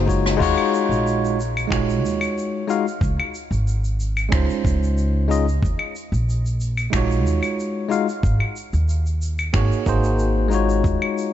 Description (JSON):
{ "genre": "sunset chillout", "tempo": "92 BPM", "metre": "4/4", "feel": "straight", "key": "Eb dorian", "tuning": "A4 = 440 Hz", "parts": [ { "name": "bell-like tine electric piano", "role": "accompaniment", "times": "0.0-11.3 s", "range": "Ab3 to F5", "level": "-22 LUFS", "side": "moving between left 7 dB and right 9 dB", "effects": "auto-pan, ping-pong delay" }, { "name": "upright bass", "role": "bass", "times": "0.0-11.0 s", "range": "Gb1 to Eb2", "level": "-21 LUFS", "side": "equal", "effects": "none" }, { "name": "electronic kick drum", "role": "drums", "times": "0.1-11.0 s", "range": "none", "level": "-23 LUFS", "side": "equal", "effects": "overdrive" }, { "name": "jazz brush drum kit", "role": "drums", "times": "0.1-11.3 s", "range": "claves, crash cymbal, finger snaps, rim click, shaker", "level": "-29 LUFS", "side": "left 1 dB", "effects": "none" } ], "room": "light reverb, small room ambience", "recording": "dark, warm production, nothing above 7.9 kHz", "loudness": "-18 LUFS", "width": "side -11 dB against mid", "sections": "0.4-11.3 A section", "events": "drum fill 0.0-0.4", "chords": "0.4 Ebm11; 3.0 Dbmaj9; 5.6 Ebm11; 8.2 Ab9sus4", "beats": "| 0.41 1.06 1.71 2.36 | 3.02 3.67 4.32 4.97 | 5.62 6.28 6.93 7.58 | 8.23 8.88 9.54 10.19 | 10.84" }